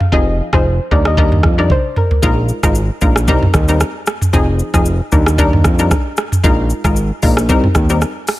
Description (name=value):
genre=afrobeats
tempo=114 BPM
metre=4/4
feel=swing 55% on 16ths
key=Eb major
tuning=A4 = 437 Hz
part: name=afro-pop drum kit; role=drums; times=0.0-8.4 s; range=hi-hat, kick drum, rim click, shaker, toms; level=-14 LUFS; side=equal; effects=none
part: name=soft round pluck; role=melody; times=0.1-2.1 s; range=Bb4 to Eb5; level=-21 LUFS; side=left 1 dB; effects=chorus, digital delay
part: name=hollow square pluck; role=accompaniment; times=0.1-8.0 s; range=F3 to Bb4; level=-18 LUFS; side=left 2 dB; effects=chorus
part: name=fat analog bass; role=bass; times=0.1-8.0 s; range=F1 to F2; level=-15 LUFS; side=equal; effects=none
room=little or no reverb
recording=none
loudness=-11 LUFS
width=side -16 dB against mid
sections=0.0-8.4 A section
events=break 0.0-2.2; drum fill 1.7-2.2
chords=0.1 Fm7; 0.9 Ebmaj7; 2.2 Bb7sus4; 3.3 Cm7; 4.3 Fm7; 5.1 Ebmaj7; 6.4 Bb7sus4; 7.5 Cm7